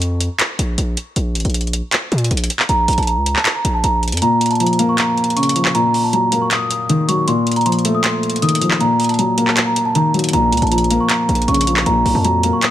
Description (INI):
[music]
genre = hip hop, trap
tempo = 157 BPM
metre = 4/4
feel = half-time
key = Bb harmonic minor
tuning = A4 = 440 Hz
[part]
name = distorted 808-style bass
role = bass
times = 0.0-4.2, 10.3-12.5 s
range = A1 to Bb2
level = -18 LUFS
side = equal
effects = distortion
[part]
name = trap drum kit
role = drums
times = 0.0-12.7 s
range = handclaps, hi-hat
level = -20 LUFS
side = equal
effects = none
[part]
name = large celesta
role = melody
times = 2.7-12.7 s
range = A5 to Eb6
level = -18 LUFS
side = right 2 dB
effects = low-pass filter
[part]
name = dark baby grand piano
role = accompaniment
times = 4.2-12.7 s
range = Bb2 to Bb3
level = -17 LUFS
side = left 2 dB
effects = low-pass filter
[sound]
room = light reverb, studio reverb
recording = none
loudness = -14 LUFS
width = side -12 dB against mid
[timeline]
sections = 0.0-12.7 A section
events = break 0.0-2.7; filter sweep 0.0-4.2; kick muted 4.2-10.3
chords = 0.0 Bb5; 1.2 N.C.; 2.7 Bbm; 5.7 Ebm/Bb; 7.3 F7/Bb; 8.8 Ebm/Bb; 10.3 Bbm; 11.9 Ebm/Bb (rootless)